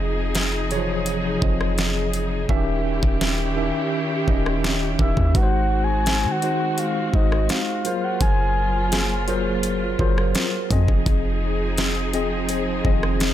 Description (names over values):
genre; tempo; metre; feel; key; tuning
contemporary R&B; 84 BPM; 4/4; straight; Db major; A4 = 445 Hz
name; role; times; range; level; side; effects
tine electric piano; accompaniment; 0.0-13.3 s; C3 to Fb5; -25 LUFS; equal; medium stereo tremolo
rich studio string section; sustained chords; 0.0-13.3 s; C3 to Ab4; -28 LUFS; equal; none
warm 808-style bass; bass; 0.0-13.3 s; Eb1 to Eb3; -24 LUFS; equal; none
smooth R&B drum kit; drums; 0.3-13.3 s; hi-hat, kick drum, rim click, snare drum; -23 LUFS; equal; none
soft octave-layered synth lead; melody; 5.0-9.2 s; Eb5 to Ab5; -25 LUFS; left 1 dB; chorus, digital delay
soft synth bell; texture; 8.9-13.3 s; Ab4 to C5; -35 LUFS; right 1 dB; none
room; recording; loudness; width
little or no reverb; none; -19 LUFS; side -12 dB against mid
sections
0.0-13.3 A section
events
hi-hats muted 2.5-5.3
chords
0.0 Dbmaj9/F; 2.5 Eb7b9; 5.3 Ab7; 7.8 Gbmaj9#11; 10.7 Fm7